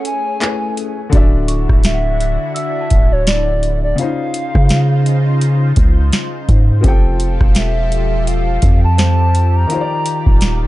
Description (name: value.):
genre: contemporary R&B.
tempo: 84 BPM.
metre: 4/4.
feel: swing 58% on 16ths.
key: unclear.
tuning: A4 = 440 Hz.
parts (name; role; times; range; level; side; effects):
hollow clarinet-like synth lead; melody; 0.0-10.7 s; C#5 to Bb5; -21 LUFS; equal; chorus, digital delay.
warm grand piano; accompaniment; 0.0-10.7 s; C#3 to G5; -24 LUFS; left 4 dB; none.
lush unison pad; sustained chords; 0.0-10.7 s; C#3 to D5; -24 LUFS; equal; chorus, phaser.
booming analog drum machine; drums; 0.1-10.6 s; handclaps, hi-hat, kick drum, rim click, snare drum; -13 LUFS; equal; none.
long sustained 808-style bass; bass; 1.1-10.7 s; D1 to C#3; -14 LUFS; equal; none.
celesta; texture; 1.5-4.5, 9.0-10.0 s; C5 to E6; -31 LUFS; right 2 dB; digital delay.
room: little or no reverb.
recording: dark, warm production, nothing above 10.8 kHz.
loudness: -12 LUFS.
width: side -17 dB against mid.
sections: 0.0-1.1 A section; 1.1-10.7 B section.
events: break 0.0-1.1.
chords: 0.0 Amaj9; 1.1 Dmaj9; 4.0 C#maj9; 6.8 Fmaj9; 9.7 Ebmaj9.